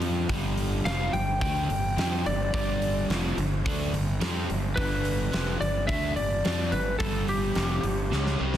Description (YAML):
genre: hard rock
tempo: 107 BPM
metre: 4/4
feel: straight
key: G mixolydian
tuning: A4 = 439 Hz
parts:
  - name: overdriven semi-hollow guitar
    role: riff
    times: 0.0-8.6 s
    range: F2 to F4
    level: -30 LUFS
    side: right 1 dB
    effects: none
  - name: fuzz fingered electric bass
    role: bass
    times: 0.0-8.6 s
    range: F1 to F2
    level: -30 LUFS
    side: equal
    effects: overdrive
  - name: huge arena drum kit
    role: drums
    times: 0.0-8.6 s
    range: hi-hat, kick drum, snare drum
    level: -31 LUFS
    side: equal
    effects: none
  - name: lightly driven lead guitar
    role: melody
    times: 0.9-8.6 s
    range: G4 to G5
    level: -30 LUFS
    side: left 1 dB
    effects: slapback echo
room: light reverb, studio reverb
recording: dense, heavily limited modern master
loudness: -24 LUFS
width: side -11 dB against mid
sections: 0.0-8.6 A section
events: drum fill 8.1-8.6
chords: 0.3 G5